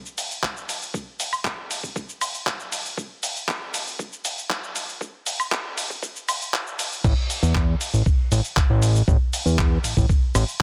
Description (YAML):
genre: nu-disco, nu disco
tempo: 118 BPM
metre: 4/4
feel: straight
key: unclear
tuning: A4 = 439 Hz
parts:
  - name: dusty soul sampler-style drum kit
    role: drums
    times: 0.1-10.6 s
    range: cabasa, crash cymbal, handclaps, hi-hat, woodblock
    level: -28 LUFS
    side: equal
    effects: none
  - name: electronic kick drum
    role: drums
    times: 0.4-10.2 s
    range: none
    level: -24 LUFS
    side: equal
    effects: high-pass filter on kick, high-pass filter on room
  - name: fat analog bass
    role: bass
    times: 7.0-10.4 s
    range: A1 to E2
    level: -22 LUFS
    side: equal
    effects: none
room: light reverb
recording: dense, heavily limited modern master, high-pass filter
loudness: -24 LUFS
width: mono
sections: 0.0-7.0 A section; 7.0-10.6 B section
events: build-up 0.0-7.0; drop 7.0-10.6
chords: none